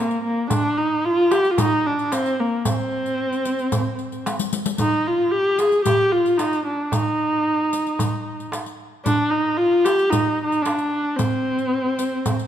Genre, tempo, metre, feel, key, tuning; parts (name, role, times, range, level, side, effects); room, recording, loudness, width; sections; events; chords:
Turkish makam ensemble; 112 BPM; 4/4; straight; C makam nihavent; A4 = 440 Hz
dark viola; melody; 0.0-12.5 s; Bb3 to Ab4; -19 LUFS; equal
riq; percussion; 0.1-12.5 s; -30 LUFS; left 6 dB
darbuka; percussion; 0.5-12.5 s; -26 LUFS; right 2 dB
light reverb; minimal, uncompressed stereo recording; -19 LUFS; side -10 dB against mid
0.0-12.5 A section
drum fill 4.3-4.8